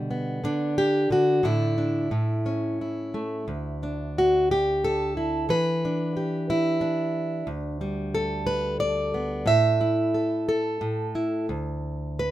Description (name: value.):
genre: folk, solo fingerstyle acoustic guitar.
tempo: 90 BPM.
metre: 3/4.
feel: rubato.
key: unclear.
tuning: A4 = 440 Hz.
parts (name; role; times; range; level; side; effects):
fingerpicked plugged-in steel-string acoustic guitar; solo; 0.0-12.3 s; D2 to E5; -23 LUFS; equal; none.
room: light reverb.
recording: minimal, uncompressed stereo recording.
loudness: -23 LUFS.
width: side -14 dB against mid.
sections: 0.0-3.5 A section; 3.5-12.3 B section.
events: none.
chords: 0.0 G/B; 1.4 Asus4; 2.1 A; 3.5 Dsus2; 5.5 Em7; 7.5 Gadd9; 9.5 A5; 11.5 N.C..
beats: 0.11 0.77 | 1.44 2.11 2.79 | 3.48 4.16 4.83 | 5.49 6.15 6.81 | 7.46 8.13 8.79 | 9.45 10.13 10.81 | 11.50 12.18.